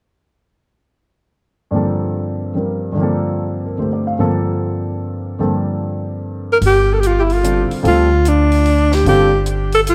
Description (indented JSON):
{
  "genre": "modal jazz",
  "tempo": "148 BPM",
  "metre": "3/4",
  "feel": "swing 65% on 8ths",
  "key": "G minor",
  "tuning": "A4 = 440 Hz",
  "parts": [
    { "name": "warm grand piano", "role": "accompaniment", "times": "1.7-9.3 s", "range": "G2 to F5", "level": "-21 LUFS", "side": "equal", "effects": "analog chorus" },
    { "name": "breathy alto saxophone", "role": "melody", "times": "6.5-9.9 s", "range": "D4 to Bb4", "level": "-16 LUFS", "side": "equal", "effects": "diffuse ambient delay" },
    { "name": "upright bass", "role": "bass", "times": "6.6-9.9 s", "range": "G1 to D2", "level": "-18 LUFS", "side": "equal", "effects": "none" },
    { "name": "compact cocktail drum kit", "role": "drums", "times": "6.6-9.9 s", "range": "hi-hat, snare drum", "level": "-33 LUFS", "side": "equal", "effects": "none" }
  ],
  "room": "moderate plate reverb, RT60 2.0 s",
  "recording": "dreamy mix soaked in reverb",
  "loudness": "-16 LUFS",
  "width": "mono",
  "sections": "1.7-6.6 A section; 6.6-9.9 B section",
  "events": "none",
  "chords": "1.7 Gm11; 6.6 G9sus4"
}